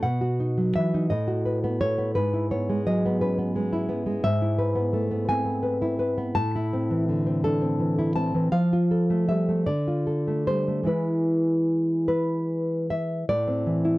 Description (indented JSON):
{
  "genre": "romantic piece for solo classical guitar",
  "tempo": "48-59 BPM (dotted quarters)",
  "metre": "6/8",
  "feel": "rubato",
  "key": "E major, A minor from 4.2 s",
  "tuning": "A4 = 439 Hz",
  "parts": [
    { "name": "nylon-string guitar", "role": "solo", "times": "0.0-14.0 s", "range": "G#2 to A5", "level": "-22 LUFS", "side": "equal", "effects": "none" }
  ],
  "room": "little or no reverb",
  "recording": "dry, close 1970s-style studio recording",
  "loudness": "-22 LUFS",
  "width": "side -19 dB against mid",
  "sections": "0.0-13.3 A section",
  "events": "none",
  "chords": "0.0 B; 1.1 B7/A; 2.2 E/G#; 6.4 Am; 8.5 F; 9.7 Dmadd11; 10.9 E; 13.3 Am",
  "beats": "| 0.04 1.10 | 2.15 3.20 | 4.22 5.27 | 6.36 7.43 | 8.52 9.66 | 10.87 12.10 | 13.29"
}